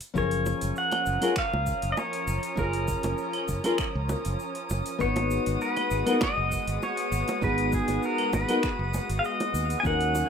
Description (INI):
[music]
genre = sunset chillout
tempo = 99 BPM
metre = 4/4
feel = swing 53% on 16ths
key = unclear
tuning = A4 = 435 Hz
[part]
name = deep house drum kit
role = drums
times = 0.0-10.3 s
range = claves, finger snaps, hi-hat, shaker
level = -37 LUFS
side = right 2 dB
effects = overdrive
[part]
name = nylon-string guitar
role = accompaniment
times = 0.1-10.3 s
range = E#3 to B4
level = -28 LUFS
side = moving between left 7 dB and right 5 dB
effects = auto-pan
[part]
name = pedal steel guitar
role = melody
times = 0.2-10.3 s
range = G#4 to G#5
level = -30 LUFS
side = equal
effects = ping-pong delay
[part]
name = lush unison pad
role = sustained chords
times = 0.2-10.3 s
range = D#3 to A#4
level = -34 LUFS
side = left 1 dB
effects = chorus
[part]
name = fingered electric bass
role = bass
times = 0.2-10.2 s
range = F#1 to D#2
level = -30 LUFS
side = right 1 dB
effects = none
[part]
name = electronic kick drum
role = drums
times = 0.2-10.0 s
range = none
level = -34 LUFS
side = right 1 dB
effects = overdrive
[part]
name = drifting glass-harmonics texture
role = texture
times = 0.8-10.3 s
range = D#6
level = -38 LUFS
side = left 1 dB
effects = chorus, built-in reverb
[part]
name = bongos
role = percussion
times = 0.5-10.3 s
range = none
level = -34 LUFS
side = right 3 dB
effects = none
[sound]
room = wet studio reverb, RT60 0.6 s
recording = rough home demo mix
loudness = -24 LUFS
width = side -7 dB against mid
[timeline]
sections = 0.0-10.3 A section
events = none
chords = 0.2 F#maj7; 5.0 G#m7